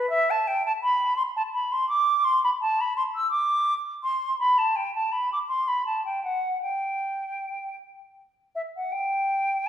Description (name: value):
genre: classical, baroque-style fantasia for unaccompanied flute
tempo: 51-57 BPM (dotted quarters)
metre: 6/8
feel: rubato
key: G major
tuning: A4 = 440 Hz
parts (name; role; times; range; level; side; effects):
- concert flute; solo; 0.0-9.7 s; E5 to E6; -23 LUFS; equal; none
room: wet recital hall reverb, RT60 1.4 s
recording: heard from further back in the room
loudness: -23 LUFS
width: side -10 dB against mid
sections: 0.0-8.9 A section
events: none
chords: none